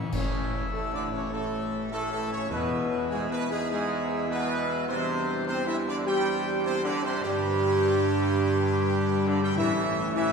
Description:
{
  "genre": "classical, ceremonial fanfare",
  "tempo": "102 BPM",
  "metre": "4/4",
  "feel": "straight",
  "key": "unclear",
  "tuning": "A4 = 438 Hz",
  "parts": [
    { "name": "pipe organ, full organ", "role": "sustained chords", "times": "0.0-10.3 s", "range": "D3 to E5", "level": "-34 LUFS", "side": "left 1 dB", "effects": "none" },
    { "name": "timpani", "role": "percussion", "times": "0.0-3.4, 9.6-10.3 s", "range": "E2 to A2", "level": "-38 LUFS", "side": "left 2 dB", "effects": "none" },
    { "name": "warm trumpet section", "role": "melody", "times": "0.1-10.3 s", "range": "G4 to G5", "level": "-32 LUFS", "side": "right 2 dB", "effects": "none" },
    { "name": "clear trombone section", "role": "sustained chords", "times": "0.1-10.3 s", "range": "G2 to G3", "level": "-32 LUFS", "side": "right 2 dB", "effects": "none" },
    { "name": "dark French horn section", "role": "sustained chords", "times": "0.1-10.3 s", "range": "G3 to G4", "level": "-30 LUFS", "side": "left 2 dB", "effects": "none" },
    { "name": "mellow tuba", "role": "bass", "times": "0.1-10.3 s", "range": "A1 to G2", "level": "-30 LUFS", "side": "right 1 dB", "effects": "none" },
    { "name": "clash cymbals and concert bass drum", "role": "percussion", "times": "0.1-1.3 s", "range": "none", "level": "-37 LUFS", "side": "equal", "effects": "none" }
  ],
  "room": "wet church reverb, RT60 3.2 s",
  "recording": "recorded in a church or concert hall",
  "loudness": "-24 LUFS",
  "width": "side -5 dB against mid",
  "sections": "0.1-10.3 A section",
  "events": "band accent 0.1-0.7",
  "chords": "0.1 A; 2.5 E; 4.9 Cadd9/E; 7.2 G; 9.6 A",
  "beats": "| 0.12 0.72 1.32 1.91 | 2.51 3.10 3.70 4.29 | 4.88 5.47 6.06 6.64 | 7.23 7.82 8.40 8.98 | 9.57 10.15"
}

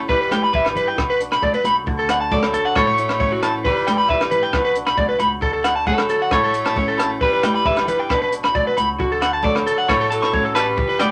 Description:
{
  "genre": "highlife guitar band",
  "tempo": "135 BPM",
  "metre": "4/4",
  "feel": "straight",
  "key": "unclear",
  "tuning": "A4 = 440 Hz",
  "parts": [
    { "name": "clean electric guitar", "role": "melody", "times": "0.0-11.1 s", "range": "A4 to D5", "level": "-25 LUFS", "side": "equal", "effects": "none" },
    { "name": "edgy tenor saxophone", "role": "second line", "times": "0.0-11.1 s", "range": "F#3 to B3", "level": "-30 LUFS", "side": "equal", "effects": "none" },
    { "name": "flamenco guitar", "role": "accompaniment", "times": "0.0-11.1 s", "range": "G2 to G4", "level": "-32 LUFS", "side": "equal", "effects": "none" },
    { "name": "upright bass", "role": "bass", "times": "0.0-11.1 s", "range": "G1 to D3", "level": "-37 LUFS", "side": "equal", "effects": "none" },
    { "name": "electric guitar at the edge of break-up", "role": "arpeggios", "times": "0.1-11.1 s", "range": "F#4 to C#6", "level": "-22 LUFS", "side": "equal", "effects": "none" },
    { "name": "compact cocktail drum kit", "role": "drums", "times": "0.1-11.1 s", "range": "hi-hat, kick drum, rim click", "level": "-27 LUFS", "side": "equal", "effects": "none" },
    { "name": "congas", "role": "percussion", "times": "0.1-11.1 s", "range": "none", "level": "-30 LUFS", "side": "equal", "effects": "none" },
    { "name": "agogo bells", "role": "percussion", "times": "0.3-11.1 s", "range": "none", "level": "-30 LUFS", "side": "equal", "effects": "none" }
  ],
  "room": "wet small room ambience, RT60 0.5 s",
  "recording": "none",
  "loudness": "-19 LUFS",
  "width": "mono",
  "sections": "0.0-11.1 A section",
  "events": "none",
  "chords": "0.1 Em/G; 1.0 Bm; 2.8 A6; 3.7 Em/G; 4.5 Bm; 5.4 D; 6.3 A6; 7.2 Em/G; 8.1 Bm; 9.0 D; 9.9 A6",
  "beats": "| 0.09 0.54 0.98 1.43 | 1.87 2.32 2.76 3.21 | 3.65 4.10 4.54 4.99 | 5.43 5.88 6.32 6.77 | 7.21 7.66 8.10 8.55 | 8.99 9.44 9.89 10.33 | 10.78"
}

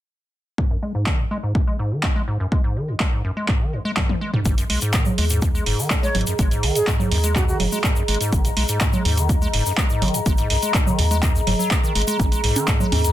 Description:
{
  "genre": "acid house",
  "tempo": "124 BPM",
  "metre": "4/4",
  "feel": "straight",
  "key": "unclear",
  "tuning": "A4 = 445 Hz",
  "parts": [
    { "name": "acid bass, square", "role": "riff", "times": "0.6-13.1 s", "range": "F#2 to G#3", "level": "-25 LUFS", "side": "equal", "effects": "tube saturation, cassette tape, sidechain pumping, digital delay" },
    { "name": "electronic kick drum", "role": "drums", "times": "0.6-12.8 s", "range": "none", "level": "-21 LUFS", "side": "equal", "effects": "none" },
    { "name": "punchy analog drum machine", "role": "drums", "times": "1.1-13.1 s", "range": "congas, handclaps, hi-hat, toms", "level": "-24 LUFS", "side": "right 2 dB", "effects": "none" },
    { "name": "round analog bass", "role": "bass", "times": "4.5-13.1 s", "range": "F#1 to G#2", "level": "-22 LUFS", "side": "equal", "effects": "sidechain pumping" },
    { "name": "tube shaker", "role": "percussion", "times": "4.5-13.1 s", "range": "none", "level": "-31 LUFS", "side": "left 4 dB", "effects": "none" },
    { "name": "warbly tape-like pad", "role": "texture", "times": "4.8-13.1 s", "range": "G#4 to A#5", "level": "-26 LUFS", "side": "left 1 dB", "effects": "chorus, built-in reverb, sidechain pumping" },
    { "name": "breathy concert flute", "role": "melody", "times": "6.0-7.6 s", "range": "F#4 to C#5", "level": "-26 LUFS", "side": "right 2 dB", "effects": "digital delay" }
  ],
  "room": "moderate studio reverb, RT60 0.6 s",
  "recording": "dense, heavily limited modern master",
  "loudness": "-18 LUFS",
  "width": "side -13 dB against mid",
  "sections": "0.6-4.5 A section; 4.5-13.1 B section",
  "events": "filter sweep on acid bass 0.6-4.5; drum fill 4.0-4.5",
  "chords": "0.6 G#5; 4.5 G#7(no3)",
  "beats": "| 0.58 1.07 1.55 2.04 | 2.52 3.00 3.49 3.97 | 4.45 4.94 5.42 5.91 | 6.39 6.87 7.36 7.84 | 8.32 8.81 9.29 9.78 | 10.26 10.74 11.23 11.71 | 12.20 12.68"
}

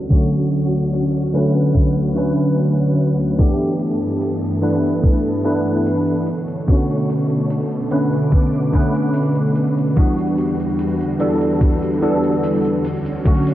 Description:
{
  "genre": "vaporwave",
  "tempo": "73 BPM",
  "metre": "4/4",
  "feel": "straight",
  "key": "G lydian",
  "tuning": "A4 = 440 Hz",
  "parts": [
    { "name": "soft string machine", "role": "sustained chords", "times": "0.0-13.5 s", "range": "D2 to D6", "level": "-24 LUFS", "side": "equal", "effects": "ensemble chorus" },
    { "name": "tine electric piano", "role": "accompaniment", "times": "0.1-13.5 s", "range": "D3 to B4", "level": "-17 LUFS", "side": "equal", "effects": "ensemble chorus, tape echo" },
    { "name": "electronic kick drum", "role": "drums", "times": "0.1-13.4 s", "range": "none", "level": "-15 LUFS", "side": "equal", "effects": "none" },
    { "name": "hi-hat", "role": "drums", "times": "0.1-13.5 s", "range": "none", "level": "-40 LUFS", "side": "right 2 dB", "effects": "low-pass filter on hats, low-pass filter on snare, low-pass filter on room" }
  ],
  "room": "moderate concert hall reverb, RT60 2.0 s, studio ambience",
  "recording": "worn, warbling old tape, cassette tape, warbly pitch drift, low-pass filter",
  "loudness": "-15 LUFS",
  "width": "side -13 dB against mid",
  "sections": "0.0-13.5 A section",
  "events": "filter sweep on drum 0.0-13.5; filter sweep 0.0-13.5",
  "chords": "0.0 Dmaj7; 3.4 G69; 6.3 Bm9; 10.0 Em9; 12.8 Dmaj7",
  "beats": "| 0.10 0.93 1.75 2.57 | 3.39 4.21 5.04 5.86 | 6.68 7.50 8.32 9.15 | 9.97 10.79 11.61 12.43 | 13.26"
}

